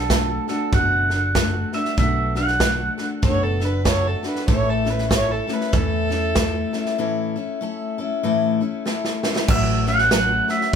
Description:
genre	honky-tonk and classic country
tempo	96 BPM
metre	4/4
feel	swing 60% on 8ths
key	A major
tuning	A4 = 441 Hz
part	pedal steel guitar	melody	0.0-3.2, 9.5-10.8 s	A4 to F#5	-21 LUFS	right 3 dB	none
part	picked steel-string acoustic guitar	accompaniment	0.0-10.8 s	A2 to A4	-24 LUFS	left 4 dB	none
part	fingered electric bass	bass	0.0-10.8 s	F#1 to E2	-24 LUFS	right 1 dB	none
part	natural country drum kit	drums	0.1-10.8 s	crash cymbal, hi-hat, kick drum, snare drum	-22 LUFS	right 1 dB	none
part	dark fiddle	second line	3.2-7.0 s	A4 to C#5	-25 LUFS	right 3 dB	none
room	moderate studio ambience, RT60 0.5 s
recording	band playing live in one room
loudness	-18 LUFS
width	side -7 dB against mid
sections	0.0-9.5 A section; 9.5-10.8 B section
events	break 7.0-9.5; drum fill 8.9-9.5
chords	0.0 Bm7; 4.5 A; 9.5 A6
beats	0.10 0.73 1.35 | 1.98 2.61 3.23 3.86 | 4.48 5.11 5.74 6.36 | 6.99 7.61 8.24 8.86 | 9.49 10.11 10.74

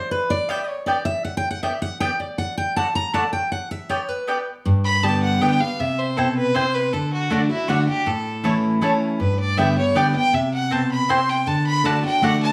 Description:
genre	bluegrass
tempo	158 BPM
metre	3/4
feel	straight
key	G major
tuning	A4 = 440 Hz
part	picked steel-string acoustic guitar	accompaniment	0.0-12.5 s	G2 to Bb5	-24 LUFS	equal	none
part	mandolin	stabs	0.5-12.3 s	A3 to A5	-27 LUFS	equal	none
part	clear fiddle	melody	4.8-12.5 s	D4 to C6	-24 LUFS	equal	none
room	moderate large studio reverb, RT60 0.8 s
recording	none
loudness	-21 LUFS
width	mono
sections	0.0-4.7 A section; 4.7-12.5 A section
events	steel-string acoustic guitar solo 0.0-4.7; fiddle solo 4.7-12.5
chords	0.1 G; 2.4 D; 3.5 G; 5.8 C; 6.9 D; 8.1 A; 9.2 G; 10.3 C; 11.5 D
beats	| 0.12 0.49 0.87 | 1.25 1.63 2.01 | 2.39 2.76 3.14 | 3.52 3.90 4.28 | 4.66 5.04 5.42 | 5.79 6.17 6.55 | 6.93 7.31 7.69 | 8.07 8.45 8.82 | 9.20 9.58 9.96 | 10.34 10.72 11.10 | 11.47 11.85 12.23

